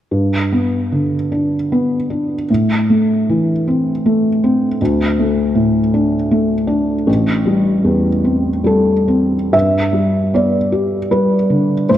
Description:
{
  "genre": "classical",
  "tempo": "77 BPM",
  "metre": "3/4",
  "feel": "rubato",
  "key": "unclear",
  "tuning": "A4 = 436 Hz",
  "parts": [
    { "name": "felt-muted upright piano", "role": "accompaniment", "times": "0.1-12.0 s", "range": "A1 to E5", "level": "-13 LUFS", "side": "equal", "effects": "none" }
  ],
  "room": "wet concert hall reverb, RT60 2.1 s",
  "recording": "worn, warbling old tape, cassette tape, warbly pitch drift",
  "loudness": "-13 LUFS",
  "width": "side -11 dB against mid",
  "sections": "0.1-9.5 A section; 9.5-12.0 B section",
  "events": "none",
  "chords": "0.1 G; 2.5 Am; 4.8 D5; 7.1 Am7; 9.5 G"
}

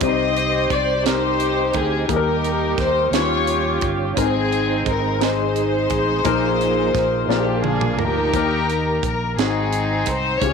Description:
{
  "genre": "slow gospel",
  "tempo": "58 BPM (dotted quarters)",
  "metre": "6/8",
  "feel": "straight",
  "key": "Eb major",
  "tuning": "A4 = 439 Hz",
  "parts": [
    { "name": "rich studio string section", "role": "melody", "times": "0.0-10.5 s", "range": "Bb3 to Eb5", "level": "-20 LUFS", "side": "left 3 dB", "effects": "none" },
    { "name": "warm baby grand piano", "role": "accompaniment", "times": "0.0-10.5 s", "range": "Ab2 to C6", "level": "-25 LUFS", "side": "left 11 dB", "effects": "none" },
    { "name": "tonewheel organ", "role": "sustained chords", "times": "0.0-8.3 s", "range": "F3 to F5", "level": "-27 LUFS", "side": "right 16 dB", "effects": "slow rotary speaker, overdrive, chorus vibrato" },
    { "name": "fingered electric bass", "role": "bass", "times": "0.0-10.5 s", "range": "G1 to Eb2", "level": "-26 LUFS", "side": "right 2 dB", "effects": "none" },
    { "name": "tight funk drum kit", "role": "drums", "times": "0.0-10.5 s", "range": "hi-hat, kick drum, snare drum, toms", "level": "-25 LUFS", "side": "right 7 dB", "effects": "none" }
  ],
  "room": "light reverb, small room reverb",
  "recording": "1960s-style stereo with parts hard left and right",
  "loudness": "-17 LUFS",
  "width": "side -5 dB against mid",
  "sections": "0.0-8.3 A section; 8.3-10.5 B section",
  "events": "drum fill 7.3-8.3; tonewheel organ fill 7.3-8.3",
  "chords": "0.0 Cm; 2.1 Eb; 3.1 Eb13; 4.2 Ab; 6.3 Bbsus4; 7.3 Bb; 8.3 Eb; 9.4 Ab7"
}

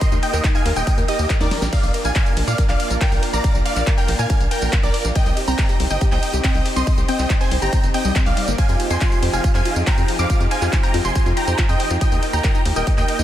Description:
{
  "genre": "uplifting trance",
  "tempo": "140 BPM",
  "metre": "4/4",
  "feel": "straight",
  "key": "F dorian",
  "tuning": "A4 = 439 Hz",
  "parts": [
    { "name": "big supersaw lead", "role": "melody", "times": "0.0-13.2 s", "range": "G4 to D6", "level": "-24 LUFS", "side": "right 1 dB", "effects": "sidechain pumping, diffuse ambient delay" },
    { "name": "analog pluck", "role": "second line", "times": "0.0-13.2 s", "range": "D5 to D6", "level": "-30 LUFS", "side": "equal", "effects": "chorus, sidechain pumping, diffuse ambient delay" },
    { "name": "lush unison pad", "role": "sustained chords", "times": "0.0-13.2 s", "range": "F3 to Ab4", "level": "-28 LUFS", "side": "equal", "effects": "chorus, sidechain pumping" },
    { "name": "wide unison pluck", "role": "arpeggios", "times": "0.0-13.2 s", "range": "G3 to F5", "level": "-28 LUFS", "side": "left 3 dB", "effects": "wide subtle chorus, sidechain pumping, diffuse ambient delay" },
    { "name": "big-room dance drum kit", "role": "drums", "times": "0.0-13.2 s", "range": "crash cymbal, handclaps, hi-hat, ride cymbal, snare drum, tambourine", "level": "-27 LUFS", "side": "equal", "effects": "none" },
    { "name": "electronic kick drum", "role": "drums", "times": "0.0-13.0 s", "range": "none", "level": "-18 LUFS", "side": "equal", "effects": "none" },
    { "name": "tight sequencer bass", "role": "bass", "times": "0.1-13.2 s", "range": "Eb1 to Bb2", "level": "-22 LUFS", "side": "equal", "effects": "sidechain pumping" }
  ],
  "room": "light reverb",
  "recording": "none",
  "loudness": "-16 LUFS",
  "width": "side -12 dB against mid",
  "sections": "0.0-13.2 A section",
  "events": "drum fill 1.4-1.7",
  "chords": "0.0 Eb; 1.7 Bb; 5.2 Cm; 8.6 Fm7; 12.0 Eb"
}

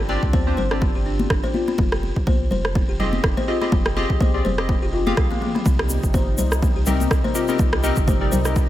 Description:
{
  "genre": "afro house",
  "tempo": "124 BPM",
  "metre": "4/4",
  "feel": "swing 56% on 16ths",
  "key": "C minor",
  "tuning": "A4 = 441 Hz",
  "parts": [
    { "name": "buzzing kalimba", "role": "arpeggios", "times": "0.0-8.7 s", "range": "Bb3 to C5", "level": "-28 LUFS", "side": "left 3 dB", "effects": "sidechain pumping, dub echo" },
    { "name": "warm analog keys", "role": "stabs", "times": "0.0-8.7 s", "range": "C4 to F5", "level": "-26 LUFS", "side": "left 2 dB", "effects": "chorus, sidechain pumping, dub echo" },
    { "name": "warm sub bass", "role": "bass", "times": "0.0-8.6 s", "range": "F1 to D2", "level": "-24 LUFS", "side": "equal", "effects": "sidechain pumping" },
    { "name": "congas", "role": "percussion", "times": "0.1-8.7 s", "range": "none", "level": "-27 LUFS", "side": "left 2 dB", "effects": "none" },
    { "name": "electronic kick drum", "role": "drums", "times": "0.2-8.7 s", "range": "none", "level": "-22 LUFS", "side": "equal", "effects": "overdrive, studio reverb" },
    { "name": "deep house drum kit", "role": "drums", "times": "0.7-8.5 s", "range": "rim click, toms", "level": "-27 LUFS", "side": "right 1 dB", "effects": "overdrive, studio reverb" },
    { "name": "warm analog pad", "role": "sustained chords", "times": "5.7-8.7 s", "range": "C3 to Eb4", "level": "-29 LUFS", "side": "right 1 dB", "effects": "chorus, tremolo, sidechain pumping" },
    { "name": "egg shaker", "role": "percussion", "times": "5.7-8.7 s", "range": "none", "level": "-32 LUFS", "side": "left 2 dB", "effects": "none" }
  ],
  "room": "small room ambience",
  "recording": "none",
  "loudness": "-18 LUFS",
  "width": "side -13 dB against mid",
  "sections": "0.0-8.7 A section",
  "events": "drum fill 4.7-5.7",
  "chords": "0.0 G7sus4; 1.8 Fm9; 5.7 Cm7"
}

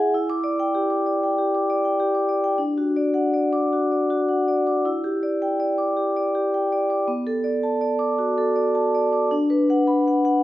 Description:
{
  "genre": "classical, contemporary piece for solo vibraphone",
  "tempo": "95-111 BPM",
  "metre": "4/4",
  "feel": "rubato",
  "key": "D major",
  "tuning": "A4 = 440 Hz",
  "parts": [
    { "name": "vibraphone with medium mallets", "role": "solo", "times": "0.0-10.4 s", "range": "B3 to D6", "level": "-19 LUFS", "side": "equal", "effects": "none" }
  ],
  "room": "wet recital hall reverb, RT60 1.5 s",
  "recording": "dark, warm production",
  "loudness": "-19 LUFS",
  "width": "side -15 dB against mid",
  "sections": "0.0-2.6 A section; 2.6-10.4 B section",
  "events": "none",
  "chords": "0.1 Em7; 2.6 D; 4.9 Em7; 7.1 Bm7; 9.3 D6"
}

